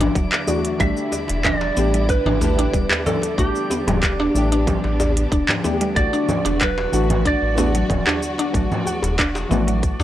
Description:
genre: organic downtempo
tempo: 93 BPM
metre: 4/4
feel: straight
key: unclear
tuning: A4 = 440 Hz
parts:
  - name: deep mellow chord stab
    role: accompaniment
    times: 0.0-10.0 s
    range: E3 to G4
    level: -26 LUFS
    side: left 2 dB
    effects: chorus, sidechain pumping, analog delay
  - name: rich studio string section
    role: sustained chords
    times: 0.0-10.0 s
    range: D3 to F#4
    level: -30 LUFS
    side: equal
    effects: sidechain pumping
  - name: mallet-like synth pluck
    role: arpeggios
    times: 0.0-10.0 s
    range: F#3 to F#5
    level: -25 LUFS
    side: left 1 dB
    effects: lush chorus, analog delay
  - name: round analog bass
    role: bass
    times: 0.0-10.0 s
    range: E1 to E2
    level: -23 LUFS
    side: equal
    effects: tube saturation, sidechain pumping
  - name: organic electronic drum kit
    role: drums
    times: 0.0-10.0 s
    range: congas, handclaps, hi-hat, shaker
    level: -23 LUFS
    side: equal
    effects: overdrive
  - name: drifting glass-harmonics texture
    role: texture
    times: 0.0-10.0 s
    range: D4 to D5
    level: -34 LUFS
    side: left 1 dB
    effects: chorus, built-in reverb
  - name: electronic kick drum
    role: drums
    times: 0.2-10.0 s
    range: none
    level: -22 LUFS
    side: equal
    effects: overdrive
  - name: djembe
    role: percussion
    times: 0.3-10.0 s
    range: none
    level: -28 LUFS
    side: left 1 dB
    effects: none
  - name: clean lap steel guitar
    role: melody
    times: 0.8-10.0 s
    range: G4 to E5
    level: -25 LUFS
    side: right 3 dB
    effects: analog delay
room: light reverb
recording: dry, gritty hardware recording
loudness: -17 LUFS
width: side -12 dB against mid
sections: 0.0-10.0 A section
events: none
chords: 0.0 Dadd9; 0.8 Em7; 6.0 Bm

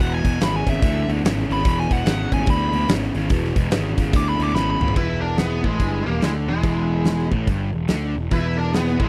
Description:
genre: blues rock power trio and southern rock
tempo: 144 BPM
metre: 4/4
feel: swing 63% on 8ths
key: E mixolydian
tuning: A4 = 441 Hz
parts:
  - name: bluesy overdriven lead guitar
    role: second line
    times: 0.0-9.1 s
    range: E4 to D6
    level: -29 LUFS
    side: equal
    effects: distortion
  - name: cranked stack guitar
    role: riff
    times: 0.0-9.1 s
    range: E2 to D3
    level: -27 LUFS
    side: equal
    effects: overdrive
  - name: fuzz picked electric bass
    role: bass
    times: 0.0-9.1 s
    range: E1 to D2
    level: -26 LUFS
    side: equal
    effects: overdrive
  - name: huge arena drum kit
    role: drums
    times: 0.2-9.1 s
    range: crash cymbal, hi-hat, kick drum, snare drum, toms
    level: -25 LUFS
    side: equal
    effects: none
  - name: octave-fuzz lead guitar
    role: melody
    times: 5.0-9.1 s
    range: G#3 to E4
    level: -28 LUFS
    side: equal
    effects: wah, distortion
room: little or no reverb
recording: dry, close 1970s-style studio recording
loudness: -21 LUFS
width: mono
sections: 0.0-5.0 A section; 5.0-9.1 B section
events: lead electric guitar solo 0.0-5.0; drum fill 4.5-5.0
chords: 0.0 E

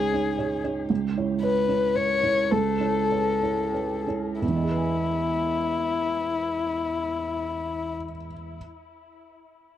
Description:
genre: neoclassical piano and strings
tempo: 86-121 BPM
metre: 3/4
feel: rubato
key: E major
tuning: A4 = 438 Hz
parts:
  - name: dark violin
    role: melody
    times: 0.0-8.0 s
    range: E4 to C#5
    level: -26 LUFS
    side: left 5 dB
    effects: tape echo
  - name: felt-muted upright piano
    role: accompaniment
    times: 0.0-8.6 s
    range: C#2 to G#5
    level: -27 LUFS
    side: right 5 dB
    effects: none
room: light reverb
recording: dry, close 1970s-style studio recording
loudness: -23 LUFS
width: side -11 dB against mid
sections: 0.0-4.4 A section; 4.4-8.5 B section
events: slowing down 0.1-4.4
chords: 0.0 C#sus2; 0.9 Aadd9/C#; 4.4 Emaj7

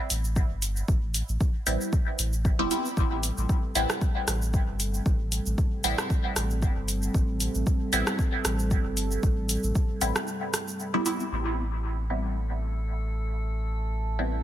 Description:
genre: dub techno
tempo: 115 BPM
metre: 4/4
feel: swing 55% on 16ths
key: A minor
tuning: A4 = 439 Hz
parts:
  - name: warm sub bass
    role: bass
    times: 0.1-14.4 s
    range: E1 to A1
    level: -29 LUFS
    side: equal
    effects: sidechain pumping
  - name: deep house drum kit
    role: drums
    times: 0.1-11.3 s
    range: cabasa, hi-hat, rim click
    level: -31 LUFS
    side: equal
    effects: low-pass filter on perc, low-pass filter on hats, low-pass filter on snare, low-pass filter on room
  - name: electronic kick drum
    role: drums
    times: 0.4-9.9 s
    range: none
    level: -26 LUFS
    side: equal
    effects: none
  - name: filtered dub chord stab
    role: stabs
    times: 1.7-14.4 s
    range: G3 to E4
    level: -30 LUFS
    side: equal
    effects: phaser, sidechain pumping, dub echo
  - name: dark analog pad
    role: sustained chords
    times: 3.0-14.4 s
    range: G3 to A4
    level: -34 LUFS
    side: right 1 dB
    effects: chorus, sidechain pumping
  - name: drifting glass-harmonics texture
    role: texture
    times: 12.2-14.4 s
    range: A3 to A4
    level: -40 LUFS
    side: right 2 dB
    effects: chorus, built-in reverb, sidechain pumping
room: light reverb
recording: none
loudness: -25 LUFS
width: side -12 dB against mid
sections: 0.0-11.3 A section; 11.3-14.4 B section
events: break 10.3-11.3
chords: 0.0 Am7

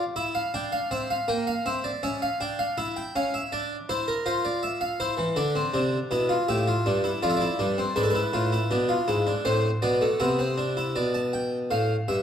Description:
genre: classical, baroque-style 3-part fugue for harpsichord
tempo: 80 BPM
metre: 4/4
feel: straight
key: D minor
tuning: A4 = 440 Hz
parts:
  - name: harpsichord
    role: solo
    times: 0.0-12.2 s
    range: F2 to A5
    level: -24 LUFS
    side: equal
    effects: none
room: wet recital hall reverb, RT60 1.5 s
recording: dark, warm production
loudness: -24 LUFS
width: side -9 dB against mid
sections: 0.0-11.0 A section; 11.0-12.2 B section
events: none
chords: 0.0 N.C.; 0.5 Em7b5; 2.0 C#dim; 3.5 Dm; 5.0 Dm13; 6.5 Fmaj13; 8.0 E7/G#; 9.5 Am; 11.0 G/B

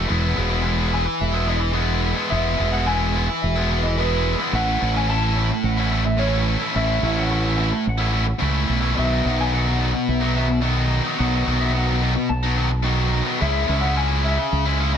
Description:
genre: post-rock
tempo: 108 BPM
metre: 4/4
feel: straight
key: E major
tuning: A4 = 439 Hz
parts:
  - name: clean lap steel guitar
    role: melody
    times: 0.0-15.0 s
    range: B4 to A5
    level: -27 LUFS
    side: equal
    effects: slapback echo
  - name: distorted electric guitar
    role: riff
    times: 0.0-15.0 s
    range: A2 to E4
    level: -22 LUFS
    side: left 1 dB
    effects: overdrive
  - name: growling fingered electric bass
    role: bass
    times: 0.0-15.0 s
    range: E1 to C#2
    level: -22 LUFS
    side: equal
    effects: overdrive
room: little or no reverb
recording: none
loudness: -18 LUFS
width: side -8 dB against mid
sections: 0.1-15.0 A section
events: none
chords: 0.1 E; 4.5 A6; 9.0 Bsus4; 13.4 C#m

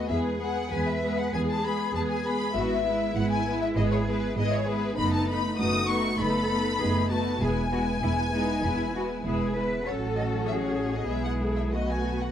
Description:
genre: quick classical-period movement for string orchestra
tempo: 98 BPM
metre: 4/4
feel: rubato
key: E major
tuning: A4 = 441 Hz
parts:
  - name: warm symphonic violin section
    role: melody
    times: 0.0-12.3 s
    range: B4 to D#6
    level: -31 LUFS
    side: left 4 dB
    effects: none
  - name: warm symphonic violin section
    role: second line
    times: 0.0-12.3 s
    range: D#4 to B4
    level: -34 LUFS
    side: left 3 dB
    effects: none
  - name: rich symphonic viola section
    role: accompaniment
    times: 0.0-12.3 s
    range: F#3 to C#4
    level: -30 LUFS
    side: equal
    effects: none
  - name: rich studio cello section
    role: bass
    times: 0.0-12.3 s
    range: D#4 to B4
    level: -33 LUFS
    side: right 1 dB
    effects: none
  - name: rich symphonic double bass section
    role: bass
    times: 0.1-12.3 s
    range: E1 to E2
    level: -31 LUFS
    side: right 2 dB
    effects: none
room: light reverb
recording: dark, warm production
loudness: -24 LUFS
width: side -10 dB against mid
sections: 0.0-12.3 A section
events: none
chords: 0.1 E; 2.6 E/G#; 5.0 B7/F#; 7.4 E; 9.9 F#m/A; 11.1 E/B; 11.7 B5

